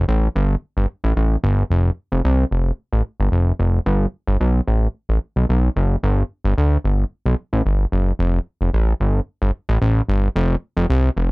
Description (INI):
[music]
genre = funk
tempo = 111 BPM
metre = 4/4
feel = straight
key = F major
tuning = A4 = 440 Hz
[part]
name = fat analog bass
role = solo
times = 0.0-11.3 s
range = F1 to D2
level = -16 LUFS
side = equal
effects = none
[sound]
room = light reverb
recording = dry, close 1970s-style studio recording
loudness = -17 LUFS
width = side -24 dB against mid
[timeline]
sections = 0.0-8.2 A section; 8.2-11.3 B section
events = none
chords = none